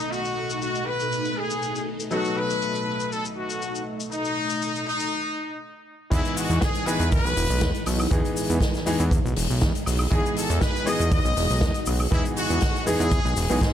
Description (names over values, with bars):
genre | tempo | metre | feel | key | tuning
nu-disco, nu disco | 120 BPM | 4/4 | straight | E major | A4 = 439 Hz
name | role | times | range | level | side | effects
brilliant trumpet section | melody | 0.0-13.7 s | D#4 to D#5 | -27 LUFS | left 2 dB | vintage 12-bit sampler grit, tape echo
clear grand piano | accompaniment | 0.0-13.7 s | E3 to B4 | -29 LUFS | left 1 dB | sidechain pumping
string machine, full ensemble | sustained chords | 0.0-13.7 s | B2 to F#4 | -32 LUFS | right 1 dB | phaser, ensemble chorus, sidechain pumping
swinging big-band drum kit | drums | 0.0-13.7 s | crash cymbal, hi-hat, shaker, snare drum, woodblock | -31 LUFS | left 3 dB | low-pass filter on hats, low-pass filter on cymbals, low-pass filter on snare, low-pass filter on perc, low-pass filter on room
fat analog bass | bass | 6.1-13.7 s | E1 to G#2 | -24 LUFS | equal | tube saturation
kick drum | drums | 6.1-13.7 s | none | -26 LUFS | equal | none
room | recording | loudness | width
light reverb, small room ambience | none | -22 LUFS | side -10 dB against mid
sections
0.0-6.1 A section; 6.1-13.7 B section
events
filter sweep on grand piano 0.0-6.1; break 5.1-6.1; drop 6.1-13.7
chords
0.0 B7; 6.1 Emaj7